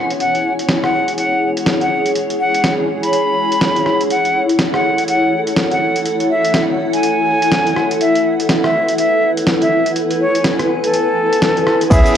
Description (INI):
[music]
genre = deep house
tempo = 123 BPM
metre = 4/4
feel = swing 60% on 16ths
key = unclear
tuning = A4 = 440 Hz
[part]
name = jazz flute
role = melody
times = 0.0-12.2 s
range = A4 to B5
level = -17 LUFS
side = equal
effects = tape echo
[part]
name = dark analog pad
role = sustained chords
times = 0.0-12.2 s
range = E3 to G#5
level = -21 LUFS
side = equal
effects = chorus, sidechain pumping
[part]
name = granular cloud pad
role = texture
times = 0.0-12.2 s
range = B3 to G#5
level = -19 LUFS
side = left 1 dB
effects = built-in reverb, sidechain pumping
[part]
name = dusty soul sampler-style drum kit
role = drums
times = 0.1-12.1 s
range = crash cymbal, hi-hat, rim click, snare drum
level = -20 LUFS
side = equal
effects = low-pass filter on hats, low-pass filter on snare, low-pass filter on cymbals, low-pass filter on room
[part]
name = barky tine electric piano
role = stabs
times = 11.9-12.2 s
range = B3 to G#4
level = -15 LUFS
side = equal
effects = sidechain pumping
[part]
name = warm sub bass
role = bass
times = 11.9-12.0 s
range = C#2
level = -15 LUFS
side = equal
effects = none
[part]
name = electronic kick drum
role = drums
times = 11.9-12.0 s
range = none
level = -11 LUFS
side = equal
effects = overdrive
[part]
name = egg shaker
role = percussion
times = 11.9-12.1 s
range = none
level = -33 LUFS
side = left 2 dB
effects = none
[sound]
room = moderate plate reverb, RT60 2.1 s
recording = dry, gritty hardware recording, cassette tape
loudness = -13 LUFS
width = side -9 dB against mid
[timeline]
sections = 0.0-11.9 A section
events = none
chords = 0.0 E69; 4.1 A6; 8.0 B7sus4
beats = | 0.20 0.69 1.18 1.67 | 2.15 2.64 3.13 3.62 | 4.11 4.59 5.08 5.57 | 6.06 6.54 7.03 7.52 | 8.01 8.50 8.98 9.47 | 9.96 10.45 10.94 11.42 | 11.91